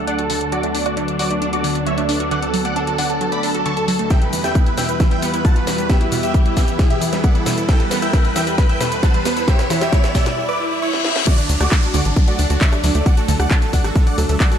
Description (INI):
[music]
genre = uplifting trance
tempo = 134 BPM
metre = 4/4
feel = straight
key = D major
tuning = A4 = 440 Hz
[part]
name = big supersaw lead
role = melody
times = 0.0-14.6 s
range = D4 to C#6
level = -22 LUFS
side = right 1 dB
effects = phaser, sidechain pumping, low-pass filter, digital delay
[part]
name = lush unison pad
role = sustained chords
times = 0.0-14.6 s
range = D2 to B4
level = -26 LUFS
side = left 1 dB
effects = chorus, sidechain pumping
[part]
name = riser, reverse cymbal and downlifter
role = sound effects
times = 1.1-14.6 s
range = none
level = -28 LUFS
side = left 2 dB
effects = none
[part]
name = wide unison pluck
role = arpeggios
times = 0.1-14.6 s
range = B2 to F#4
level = -25 LUFS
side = right 3 dB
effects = phaser, sidechain pumping, digital delay
[part]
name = house drum kit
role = drums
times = 0.1-14.6 s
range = crash cymbal, handclaps, hi-hat, rim click, shaker, snare drum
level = -25 LUFS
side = left 2 dB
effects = sidechain pumping on hats, high-pass filter on hats, high-pass filter on snare, sidechain pumping on perc, high-pass filter on perc, sidechain pumping on cymbals, high-pass filter on cymbals, high-pass filter on room
[part]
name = electronic kick drum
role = drums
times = 4.1-14.5 s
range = none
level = -15 LUFS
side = equal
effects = none
[part]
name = tight sequencer bass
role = bass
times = 11.5-14.4 s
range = A1 to D2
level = -18 LUFS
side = equal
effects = sidechain pumping
[sound]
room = light reverb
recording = dark, warm production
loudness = -15 LUFS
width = side -9 dB against mid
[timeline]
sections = 0.0-11.3 A section; 11.3-14.6 B section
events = build-up 0.0-11.3; riser 1.1-10.4; drum fill 4.1-10.4, 10.9-11.3; break 10.4-11.3; reverse cymbal 10.4-11.3; drop 11.3-14.6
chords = 0.0 D; 4.1 Em; 11.3 D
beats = 0.07 | 0.52 0.97 1.42 1.87 | 2.31 2.76 3.21 3.66 | 4.11 4.55 5.00 5.45 | 5.90 6.34 6.79 7.24 | 7.69 8.13 8.58 9.03 | 9.48 9.93 10.37 10.82 | 11.27 11.72 12.16 12.61 | 13.06 13.51 13.96 14.40